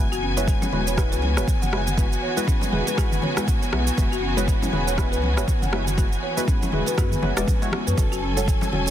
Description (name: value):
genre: afro house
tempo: 120 BPM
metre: 4/4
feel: swing 57% on 16ths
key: unclear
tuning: A4 = 439 Hz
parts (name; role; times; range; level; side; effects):
- dark studio string section; sustained chords; 0.0-8.9 s; E3 to G#5; -28 LUFS; left 1 dB; sidechain pumping
- deep mellow chord stab; stabs; 0.0-8.9 s; G#3 to D5; -30 LUFS; left 1 dB; chorus, sidechain pumping, digital delay
- warm sub bass; bass; 0.0-8.9 s; E1 to F#2; -26 LUFS; equal; sidechain pumping
- folk marimba with soft mallets; arpeggios; 0.1-8.9 s; C#4 to F#5; -30 LUFS; right 1 dB; sidechain pumping, digital delay
- afro-pop drum kit; drums; 0.1-8.9 s; rim click, shaker, toms; -30 LUFS; equal; soft clipping on snare
- congas; percussion; 0.4-8.9 s; none; -33 LUFS; left 2 dB; none
- electronic kick drum; drums; 0.5-8.6 s; none; -22 LUFS; equal; none
room: light reverb, small room ambience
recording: dense, heavily limited modern master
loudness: -20 LUFS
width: side -11 dB against mid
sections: 0.0-8.9 A section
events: none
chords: 0.0 Eadd9; 8.0 F#m